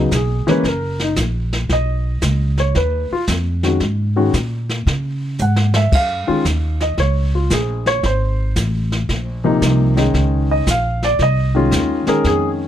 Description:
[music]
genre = jazz piano trio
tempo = 114 BPM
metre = 4/4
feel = swing 67% on 8ths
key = unclear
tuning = A4 = 440 Hz
[part]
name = dark baby grand piano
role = melody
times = 0.0-12.7 s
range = C3 to Gb5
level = -18 LUFS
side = left 1 dB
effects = none
[part]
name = upright bass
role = bass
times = 0.0-12.7 s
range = Gb1 to Db3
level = -18 LUFS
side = right 1 dB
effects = none
[part]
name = jazz brush drum kit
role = drums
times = 0.1-12.7 s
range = brushed snare drum, crash cymbal, hi-hat, kick drum, snare drum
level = -22 LUFS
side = left 1 dB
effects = none
[sound]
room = little or no reverb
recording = close, detailed microphones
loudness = -15 LUFS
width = side -10 dB against mid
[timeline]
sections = 0.0-12.7 A section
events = grand piano solo 0.0-12.7; drum fill 5.4-5.9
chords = 0.0 Dbm7; 0.6 Gb; 1.7 Badd9; 3.8 Absus2; 4.9 Db5; 5.9 Gbmaj7; 8.0 Abadd9; 10.1 Dbmaj7

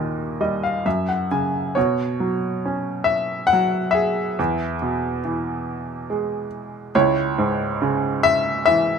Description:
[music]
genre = classical, lyrical solo piano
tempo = 69 BPM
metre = 3/4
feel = rubato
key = unclear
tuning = A4 = 440 Hz
[part]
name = bright baby grand piano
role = solo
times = 0.0-9.0 s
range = C#2 to Ab5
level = -19 LUFS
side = equal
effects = none
[sound]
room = light reverb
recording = minimal, uncompressed stereo recording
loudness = -19 LUFS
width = side -6 dB against mid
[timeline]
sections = 0.0-1.8 A section; 1.8-9.0 B section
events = grand piano fill 0.0-1.8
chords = 0.0 Eb; 0.9 Gb; 1.8 Bsus2; 4.4 E; 6.9 C#m

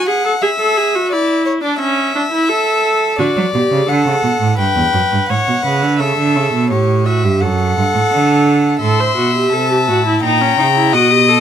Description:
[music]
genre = classical, baroque-style fugue for string quartet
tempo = 85 BPM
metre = 4/4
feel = straight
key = D major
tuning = A4 = 436 Hz
[part]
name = warm violin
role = second line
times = 0.0-11.4 s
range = C#5 to G5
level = -18 LUFS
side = left 3 dB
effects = none
[part]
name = warm viola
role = accompaniment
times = 0.0-11.4 s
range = C#4 to C#5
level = -16 LUFS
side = right 1 dB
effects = none
[part]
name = rich cello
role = bass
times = 3.2-11.4 s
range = E2 to F#3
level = -16 LUFS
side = right 4 dB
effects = none
[part]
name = warm violin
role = melody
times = 8.8-11.4 s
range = A5 to D#6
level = -15 LUFS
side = left 11 dB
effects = none
[sound]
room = little or no reverb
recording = close, detailed microphones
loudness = -12 LUFS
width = side -9 dB against mid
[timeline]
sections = 0.0-8.8 A section; 8.8-11.4 B section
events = none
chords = 0.4 E; 1.8 A/C#; 3.2 D; 4.6 G; 6.0 A; 7.4 D/F#; 8.8 F#m7b5/A; 10.2 A#dim7

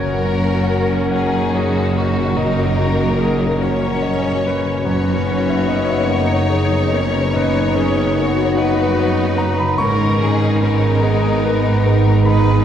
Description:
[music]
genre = cinematic, emotional film score for orchestra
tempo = 48 BPM (dotted quarters)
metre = 6/8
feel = rubato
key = B major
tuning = A4 = 441 Hz
[part]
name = rich symphonic violin section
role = melody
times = 0.0-12.6 s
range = F#4 to C#5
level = -24 LUFS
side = left 3 dB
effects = none
[part]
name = rich symphonic violin section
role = second line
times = 0.0-12.6 s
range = C#4 to F#4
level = -26 LUFS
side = left 2 dB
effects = none
[part]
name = clear symphonic viola section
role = accompaniment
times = 0.0-12.6 s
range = G#3 to D#4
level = -28 LUFS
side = equal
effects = none
[part]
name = warm grand piano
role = accompaniment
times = 0.0-12.6 s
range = F#2 to C#6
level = -23 LUFS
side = left 1 dB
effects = none
[part]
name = warm French horn section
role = sustained chords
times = 0.0-12.6 s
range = A#2 to F#4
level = -24 LUFS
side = left 2 dB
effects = none
[part]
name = concert harp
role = arpeggios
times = 0.0-12.6 s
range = F#2 to C#6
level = -24 LUFS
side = left 3 dB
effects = none
[part]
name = rich studio cello section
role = bass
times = 0.0-12.6 s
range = F#2 to G#2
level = -20 LUFS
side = right 2 dB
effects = none
[part]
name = rich symphonic double bass section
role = bass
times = 0.0-12.6 s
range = F#1 to G#1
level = -22 LUFS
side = right 2 dB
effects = none
[part]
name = mellow clarinet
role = second line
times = 1.1-12.6 s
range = F#4 to B4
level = -26 LUFS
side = left 2 dB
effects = none
[sound]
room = wet concert hall reverb, RT60 2.2 s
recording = heard from further back in the room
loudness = -14 LUFS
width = side -9 dB against mid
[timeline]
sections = 0.0-12.6 A section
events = none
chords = 0.0 F#; 4.9 Badd9/F#; 9.8 G#m

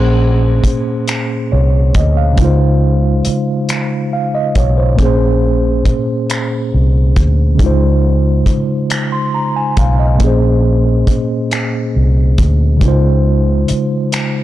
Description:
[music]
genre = slow six-eight R&B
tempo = 46 BPM (dotted quarters)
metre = 6/8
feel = straight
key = Bb minor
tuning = A4 = 439 Hz
[part]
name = mellow tine electric piano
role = accompaniment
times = 0.0-14.4 s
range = Bb2 to C6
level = -15 LUFS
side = equal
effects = medium stereo tremolo
[part]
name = vintage muted fingered electric bass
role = bass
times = 0.0-13.7 s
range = Bb1 to D2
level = -12 LUFS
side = equal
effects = none
[part]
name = warm soul drum kit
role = drums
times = 0.6-14.3 s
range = finger snaps, hi-hat, kick drum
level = -16 LUFS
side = equal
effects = soft clipping on snare
[sound]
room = small room ambience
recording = blown-out, overdriven recording, overdrive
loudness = -11 LUFS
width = side -14 dB against mid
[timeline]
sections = 0.0-14.4 A section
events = none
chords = 0.0 Bbm9; 2.4 Dbmaj9; 5.0 Bbm9; 7.6 Dbmaj9; 10.2 Bbm9; 12.8 Dbmaj9

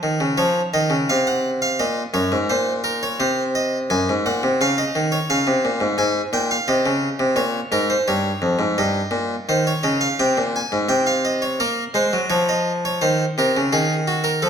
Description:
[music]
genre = classical, baroque-style two-part invention for harpsichord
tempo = 85 BPM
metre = 4/4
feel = straight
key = Db major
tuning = A4 = 440 Hz
[part]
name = harpsichord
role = solo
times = 0.0-14.5 s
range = F2 to Ab5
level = -18 LUFS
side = equal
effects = none
[sound]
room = wet recital hall reverb, RT60 1.6 s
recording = none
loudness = -18 LUFS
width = side -7 dB against mid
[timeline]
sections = 0.4-11.6 A section; 11.6-14.5 B section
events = none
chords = 0.4 Db; 1.8 Ebm7; 3.2 Ab7/C; 4.6 Db; 6.0 Ab; 7.4 Bbm7; 8.8 Eb7/G; 10.2 Ab; 11.6 Bbm; 13.0 Cm7

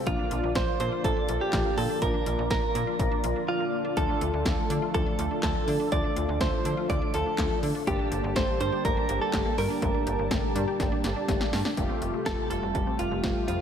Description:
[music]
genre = synth-pop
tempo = 123 BPM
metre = 4/4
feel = straight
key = F major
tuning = A4 = 440 Hz
[part]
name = mellow synth brass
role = accompaniment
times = 0.0-13.6 s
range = A3 to A5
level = -32 LUFS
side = left 1 dB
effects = chorus, slapback echo
[part]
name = string machine, cellos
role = sustained chords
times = 0.0-13.6 s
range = C3 to E5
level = -37 LUFS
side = equal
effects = ensemble chorus
[part]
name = direct-recorded clean electric guitar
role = melody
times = 0.1-13.6 s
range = F4 to D5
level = -30 LUFS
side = right 2 dB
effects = wide subtle chorus, slapback echo, digital delay
[part]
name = resonant blip pluck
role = arpeggios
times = 0.1-13.5 s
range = F3 to C5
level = -36 LUFS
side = left 2 dB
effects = chorus, slapback echo, digital delay
[part]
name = slap-like FM bass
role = bass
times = 0.1-13.6 s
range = F1 to D3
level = -32 LUFS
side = equal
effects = none
[part]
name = house drum kit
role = drums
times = 0.1-13.6 s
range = handclaps, hi-hat, kick drum, snare drum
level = -30 LUFS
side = equal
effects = none
[sound]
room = moderate lush hall reverb, RT60 2.2 s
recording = big arena sound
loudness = -25 LUFS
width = side -8 dB against mid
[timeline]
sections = 0.0-11.8 A section; 11.8-13.6 B section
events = silent gap 3.5-4.0; drum fill 10.8-11.8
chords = 0.1 Bb; 4.0 Dm; 7.9 Gmadd9; 11.8 Fadd9

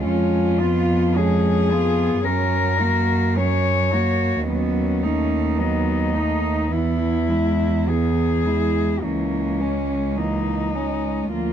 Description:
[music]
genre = classical, lyrical piece for cello ensemble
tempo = 53 BPM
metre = 4/4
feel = rubato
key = unclear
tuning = A4 = 440 Hz
[part]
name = dark cello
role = melody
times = 0.0-11.5 s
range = C#4 to C#5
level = -24 LUFS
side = left 7 dB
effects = none
[part]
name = rich cello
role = second line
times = 0.0-11.5 s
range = A#3 to F#4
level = -26 LUFS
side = right 9 dB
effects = none
[part]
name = dark cello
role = accompaniment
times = 0.0-11.5 s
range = E3 to B3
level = -25 LUFS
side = left 2 dB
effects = none
[part]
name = rich cello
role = bass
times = 0.0-11.5 s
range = C#2 to F#2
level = -22 LUFS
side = right 2 dB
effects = none
[sound]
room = light reverb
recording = dark, warm production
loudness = -18 LUFS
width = side -9 dB against mid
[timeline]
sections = 0.0-11.5 A section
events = none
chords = 0.1 C#7/E#; 2.3 F#; 4.5 B7/D#; 6.7 E; 9.0 A#m7b5/C#

